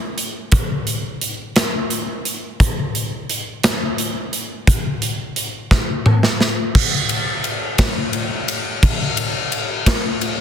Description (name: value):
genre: rock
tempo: 58 BPM (dotted quarters)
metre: 6/8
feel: straight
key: none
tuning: none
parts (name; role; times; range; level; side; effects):
- big rock drum kit; drums; 0.2-10.4 s; crash cymbal, hi-hat, kick drum, ride cymbal, snare drum, toms; -17 LUFS; equal; none
room: little or no reverb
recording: dense, heavily limited modern master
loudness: -17 LUFS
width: side -8 dB against mid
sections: 0.0-6.7 A section; 6.7-10.4 B section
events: drum fill 5.7-6.7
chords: none